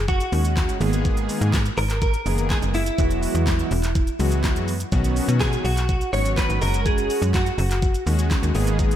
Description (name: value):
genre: dance-pop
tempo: 124 BPM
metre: 4/4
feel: straight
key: unclear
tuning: A4 = 440 Hz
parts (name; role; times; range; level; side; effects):
- direct-recorded clean electric guitar; melody; 0.0-8.0 s; E4 to C#5; -26 LUFS; equal; ensemble chorus, analog delay
- slap-like FM bass; bass; 0.0-9.0 s; E1 to B2; -22 LUFS; equal; sidechain pumping
- pop drum kit; drums; 0.1-9.0 s; handclaps, hi-hat, kick drum, shaker, snare drum; -24 LUFS; equal; none
- big bright polysynth; accompaniment; 0.3-9.0 s; D#3 to G#4; -27 LUFS; equal; sidechain pumping
room: light reverb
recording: none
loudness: -19 LUFS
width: side -11 dB against mid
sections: 0.0-9.0 A section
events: none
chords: 0.0 F#sus2; 0.8 G#madd9; 3.0 Eadd9; 4.9 Badd9; 6.6 F#sus2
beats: 0.08 0.57 | 1.05 1.53 2.02 2.50 | 2.98 3.47 3.95 4.44 | 4.92 5.41 5.89 6.37 | 6.86 7.34 7.82 8.31 | 8.79